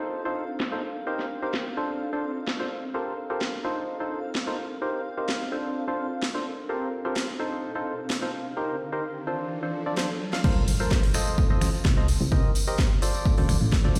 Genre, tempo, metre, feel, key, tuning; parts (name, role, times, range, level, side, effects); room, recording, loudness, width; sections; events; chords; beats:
piano house; 128 BPM; 4/4; straight; G minor; A4 = 440 Hz
percussive organ stab; riff; 0.0-14.0 s; D4 to F5; -33 LUFS; equal; chorus, sidechain pumping, delay
granular cloud pad; texture; 0.0-8.6 s; C4 to F5; -38 LUFS; equal; built-in reverb, sidechain pumping
house drum kit; drums; 0.6-14.0 s; crash cymbal, finger snaps, hi-hat, snare drum; -35 LUFS; equal; low-pass filter on snare, studio reverb, low-pass filter on cymbals, low-pass filter on hats
riser and impact; sound effects; 8.8-12.3 s; -36 LUFS; equal
solid FM bass; bass; 10.4-14.0 s; D1 to D2; -27 LUFS; equal; sidechain pumping
electronic kick drum; drums; 10.4-13.8 s; -25 LUFS; equal; studio reverb
tambourine and congas; percussion; 10.4-14.0 s; -36 LUFS; equal
moderate plate reverb, RT60 1.5 s, digital ambience; played on a big sound system in a bare room, stone room reverb; -27 LUFS; mono
0.0-10.4 A section; 10.4-14.0 B section
riser 8.8-10.4; drum fill 10.0-10.4; drop 10.4-14.0; impact 10.4-12.3
0.1 F7; 0.8 Cm7; 2.0 Dm7; 2.9 Gm11; 3.9 F7; 4.6 Cm7; 5.8 Dm7; 6.7 Gm11; 7.6 F7; 8.3 Cm7; 9.5 Dm7; 10.4 Gm11 (rootless); 11.4 F7; 12.1 Cm7; 13.3 Dm7
0.13 0.60 | 1.07 1.54 2.00 2.47 | 2.94 3.41 3.88 4.35 | 4.82 5.29 5.75 6.22 | 6.69 7.16 7.63 8.10 | 8.57 9.04 9.51 9.97 | 10.44 10.91 11.38 11.85 | 12.32 12.79 13.26 13.72